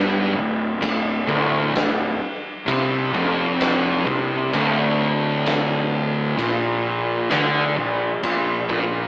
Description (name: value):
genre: stoner and doom metal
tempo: 65 BPM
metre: 4/4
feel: straight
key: D minor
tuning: A4 = 440 Hz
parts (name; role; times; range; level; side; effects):
- thick fuzz guitar; riff; 0.0-9.1 s; D2 to D3; -24 LUFS; left 1 dB; distortion
- thick fuzz guitar; riff; 0.0-9.1 s; D2 to D3; -24 LUFS; right 1 dB; distortion
- fuzz picked electric bass; bass; 0.0-9.1 s; D1 to D2; -24 LUFS; equal; overdrive
- big rock drum kit; drums; 0.8-8.9 s; kick drum, ride cymbal, snare drum; -24 LUFS; equal; none
room: light reverb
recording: rough rehearsal-room recording, tube saturation, AM radio sound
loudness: -18 LUFS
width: side -22 dB against mid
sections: 0.0-9.1 A section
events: none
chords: 0.0 Dm; 6.4 Gm (rootless)